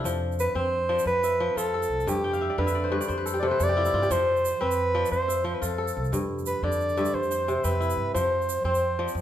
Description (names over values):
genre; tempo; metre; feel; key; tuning
west african traditional, West African string and xylophone music; 119 BPM (dotted quarters); 12/8; straight; F lydian; A4 = 440 Hz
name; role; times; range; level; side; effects
kora; arpeggios; 0.0-9.2 s; G2 to G5; -29 LUFS; left 3 dB; none
upright bass; bass; 0.0-9.2 s; C2 to G2; -31 LUFS; right 1 dB; none
egg shaker; percussion; 0.1-9.2 s; none; -39 LUFS; right 10 dB; none
mellow soprano saxophone; melody; 0.4-9.1 s; G4 to D5; -26 LUFS; right 1 dB; none
room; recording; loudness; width
moderate recital hall reverb, RT60 1.3 s; minimal, uncompressed stereo recording; -23 LUFS; side -11 dB against mid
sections
0.1-9.2 A section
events
soprano saxophone solo 0.1-9.2; kora fill 2.2-4.1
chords
0.1 F; 2.1 G/F; 4.1 F; 6.1 G5/F; 7.1 C/F; 8.1 F5